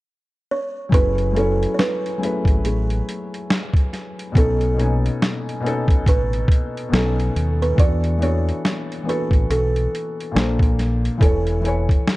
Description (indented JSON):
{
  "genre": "lo-fi hip hop",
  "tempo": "70 BPM",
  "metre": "4/4",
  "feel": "swing 59% on 16ths",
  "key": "F# minor",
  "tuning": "A4 = 440 Hz",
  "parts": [
    { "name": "buzzing kalimba", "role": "melody", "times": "0.5-12.2 s", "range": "G#4 to D5", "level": "-25 LUFS", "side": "right 2 dB", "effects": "analog delay" },
    { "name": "felt-muted upright piano", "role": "accompaniment", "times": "0.9-12.2 s", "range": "A#2 to G#5", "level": "-24 LUFS", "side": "left 2 dB", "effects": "none" },
    { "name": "deep dub fingered electric bass", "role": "bass", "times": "0.9-11.9 s", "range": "E1 to E2", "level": "-21 LUFS", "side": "equal", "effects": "none" },
    { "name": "boom bap sampler-style drum kit", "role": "drums", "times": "0.9-12.2 s", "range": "hi-hat, kick drum, snare drum", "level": "-18 LUFS", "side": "equal", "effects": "none" }
  ],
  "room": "small room ambience",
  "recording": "dark, warm production",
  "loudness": "-17 LUFS",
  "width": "side -19 dB against mid",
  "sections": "0.9-12.2 A section",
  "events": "none",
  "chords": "0.0 N.C.; 0.9 F#m11; 4.4 B9; 7.8 E9sus4; 10.4 A#maj9; 11.2 Amaj9/E"
}